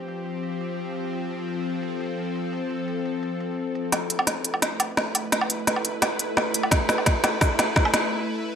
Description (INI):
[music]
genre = half-time drum and bass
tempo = 172 BPM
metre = 4/4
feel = half-time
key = A minor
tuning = A4 = 440 Hz
[part]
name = bowed-like drone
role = sustained chords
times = 0.0-8.6 s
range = F3 to B4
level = -28 LUFS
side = left 1 dB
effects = built-in reverb, sidechain pumping
[part]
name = organic electronic drum kit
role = drums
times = 0.1-8.0 s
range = hi-hat, snare drum, woodblock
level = -22 LUFS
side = equal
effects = low-pass filter on hats, studio reverb, low-pass filter on snare, low-pass filter on perc, gated reverb
[part]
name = electronic kick drum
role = drums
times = 6.7-7.8 s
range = none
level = -22 LUFS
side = equal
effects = overdrive, studio reverb
[sound]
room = moderate plate reverb, RT60 1.7 s, digital ambience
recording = bright 1980s-style digital production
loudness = -22 LUFS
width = side -8 dB against mid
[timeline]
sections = 0.0-3.9 A section; 3.9-8.6 B section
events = build-up 3.9-8.6; drum fill 3.9-8.1; break 8.1-8.6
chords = 0.0 F; 3.9 A5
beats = 0.09 0.44 0.79 | 1.13 1.48 1.83 2.18 | 2.53 2.88 3.23 3.58 | 3.92 4.27 4.62 4.97 | 5.32 5.67 6.02 6.37 | 6.72 7.07 7.41 7.76 | 8.11 8.46